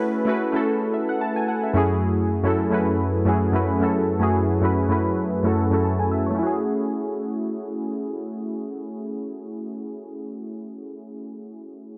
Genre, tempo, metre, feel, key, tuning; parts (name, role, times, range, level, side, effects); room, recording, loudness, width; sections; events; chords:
amapiano; 110 BPM; 4/4; swing 55% on 16ths; F# minor; A4 = 440 Hz
warm analog keys; accompaniment; 0.0-12.0 s; F#2 to A5; -24 LUFS; equal; chorus, low-pass filter
light reverb; dense, heavily limited modern master; -23 LUFS; mono
0.0-6.4 A section; 6.4-10.7 B section
filter sweep on synth keys 0.0-6.4
0.0 F#m9; 1.7 F#m11; 6.4 F#m9